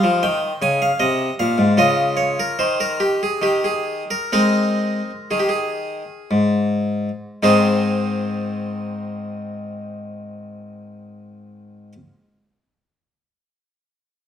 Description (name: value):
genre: classical, baroque-style suite movement for harpsichord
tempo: 53-79 BPM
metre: 3/4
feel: rubato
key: Ab major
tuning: A4 = 440 Hz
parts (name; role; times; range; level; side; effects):
- harpsichord; solo; 0.0-11.9 s; Ab2 to Ab5; -18 LUFS; left 1 dB; none
room: wet stone room reverb, RT60 1.3 s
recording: none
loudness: -17 LUFS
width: side -9 dB against mid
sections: 0.0-7.4 A section; 7.4-10.8 B section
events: slowing down 0.6-7.4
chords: 0.0 Eb7; 1.0 Ab/C; 1.8 Db69; 2.6 N.C.; 4.3 Ab